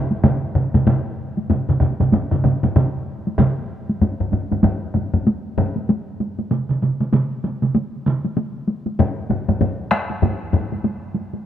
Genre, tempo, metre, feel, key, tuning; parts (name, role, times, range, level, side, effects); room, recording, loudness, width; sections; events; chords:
japanese traditional, taiko drum ensemble; 96 BPM; 4/4; swing 60% on 16ths
taiko ensemble; percussion; 0.1-11.4 s; -22 LUFS; right 1 dB
taiko ensemble; percussion; 0.2-10.7 s; -20 LUFS; left 2 dB
taiko ensemble; percussion; 0.2-8.2 s; -21 LUFS; right 3 dB
moderate huge ambient reverb, RT60 4.1 s; dark, warm production; -18 LUFS; side -10 dB against mid
0.0-4.0 A section; 4.0-11.5 B section
speeding up 0.0-11.5